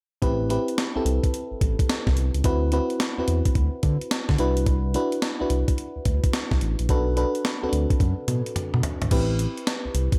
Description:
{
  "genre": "R&B, new jack swing",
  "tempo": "108 BPM",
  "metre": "4/4",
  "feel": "swing 65% on 16ths",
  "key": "A dorian",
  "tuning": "A4 = 440 Hz",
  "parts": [
    { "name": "FM electric piano", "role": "accompaniment", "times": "0.2-10.2 s", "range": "C4 to B4", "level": "-29 LUFS", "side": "equal", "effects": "none" },
    { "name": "smooth synth bass", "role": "bass", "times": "0.2-10.1 s", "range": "G#1 to D3", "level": "-26 LUFS", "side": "equal", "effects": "none" },
    { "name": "breakbeat sampler-style drum kit", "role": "drums", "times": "0.2-10.2 s", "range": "crash cymbal, hi-hat, kick drum, snare drum, toms", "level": "-27 LUFS", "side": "equal", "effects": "gated reverb" }
  ],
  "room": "little or no reverb",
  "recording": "none",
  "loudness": "-24 LUFS",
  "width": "mono",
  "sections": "0.2-9.1 A section; 9.1-10.2 B section",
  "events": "drum fill 8.0-9.1",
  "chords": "0.2 Am9; 2.4 D13; 4.4 Cmaj9#11; 6.9 Bm7; 9.1 Am9"
}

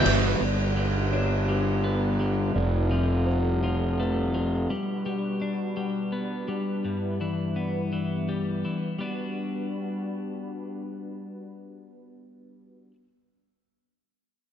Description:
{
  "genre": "rock",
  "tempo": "56 BPM (dotted quarters)",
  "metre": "6/8",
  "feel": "straight",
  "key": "G major",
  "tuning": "A4 = 440 Hz",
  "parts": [
    { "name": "warm analog pad", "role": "sustained chords", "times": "0.0-12.9 s", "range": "B2 to B4", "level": "-36 LUFS", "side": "equal", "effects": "chorus" },
    { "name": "felt-muted upright piano", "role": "arpeggios", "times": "0.0-4.7 s", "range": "B4 to D5", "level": "-38 LUFS", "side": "right 5 dB", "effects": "slapback echo" },
    { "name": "twelve-string electric guitar", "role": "arpeggios", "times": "0.0-12.9 s", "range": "F2 to F#4", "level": "-30 LUFS", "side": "left 2 dB", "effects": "slapback echo" },
    { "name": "fuzz fingered electric bass", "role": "bass", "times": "0.1-4.7 s", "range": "F1 to G1", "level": "-25 LUFS", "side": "equal", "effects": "overdrive" }
  ],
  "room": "light reverb, small room ambience",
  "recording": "nothing above 7.8 kHz",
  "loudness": "-25 LUFS",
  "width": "side -9 dB against mid",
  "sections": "0.4-9.0 A section; 9.0-13.3 B section",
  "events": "none",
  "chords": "0.4 Gmaj7; 2.6 Fmaj9#11; 4.7 Gmaj7; 6.8 Em7/G; 9.0 Gmaj7"
}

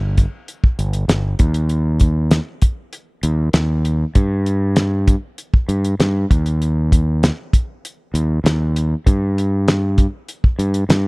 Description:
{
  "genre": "psychedelic rock",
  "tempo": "98 BPM",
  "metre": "4/4",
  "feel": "straight",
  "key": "unclear",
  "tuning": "A4 = 441 Hz",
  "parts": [
    { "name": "growling fingered electric bass", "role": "bass", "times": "0.0-11.1 s", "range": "G1 to G2", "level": "-17 LUFS", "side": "equal", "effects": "overdrive" },
    { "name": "cloth-damped thuddy drum kit", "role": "drums", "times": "0.2-11.0 s", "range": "hi-hat, kick drum, snare drum", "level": "-15 LUFS", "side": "equal", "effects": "none" }
  ],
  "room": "little or no reverb",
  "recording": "dry, close 1970s-style studio recording",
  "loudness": "-15 LUFS",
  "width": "side -32 dB against mid",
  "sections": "0.0-11.1 A section",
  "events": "none",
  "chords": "none"
}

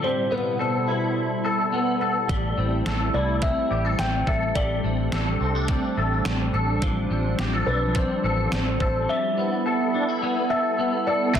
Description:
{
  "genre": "dream pop",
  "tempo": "106 BPM",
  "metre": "4/4",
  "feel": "straight",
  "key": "unclear",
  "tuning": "A4 = 439 Hz",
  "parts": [
    { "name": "felt-muted upright piano", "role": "melody", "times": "0.0-11.4 s", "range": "B4 to G5", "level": "-28 LUFS", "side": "left 1 dB", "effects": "tape echo" },
    { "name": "phased analog pad", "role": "sustained chords", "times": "0.0-11.4 s", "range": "B2 to E4", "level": "-29 LUFS", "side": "right 2 dB", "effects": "phaser, chorus" },
    { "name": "clean electric guitar", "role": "arpeggios", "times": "0.0-11.4 s", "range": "F3 to A4", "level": "-25 LUFS", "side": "left 2 dB", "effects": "ensemble chorus, tape echo" },
    { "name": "vintage muted fingered electric bass", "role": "bass", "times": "2.3-11.4 s", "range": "A1 to C2", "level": "-26 LUFS", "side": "equal", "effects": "none" },
    { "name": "detuned 8-bit digital drum machine", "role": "drums", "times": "2.3-11.4 s", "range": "crash cymbal, hi-hat, kick drum, snare drum", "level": "-28 LUFS", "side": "equal", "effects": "none" },
    { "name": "cranked stack guitar", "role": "accompaniment", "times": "11.3-11.4 s", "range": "A2 to A3", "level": "-24 LUFS", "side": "right 6 dB", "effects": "overdrive, tremolo, ensemble chorus" }
  ],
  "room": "moderate plate reverb, RT60 1.4 s, digital ambience",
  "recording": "dense, heavily limited modern master",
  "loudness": "-21 LUFS",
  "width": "side -9 dB against mid",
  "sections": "0.0-11.4 A section",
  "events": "none",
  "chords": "0.0 Cmaj7; 2.3 Am7; 4.6 D7sus4/A; 6.8 G7sus4/A; 9.1 G69"
}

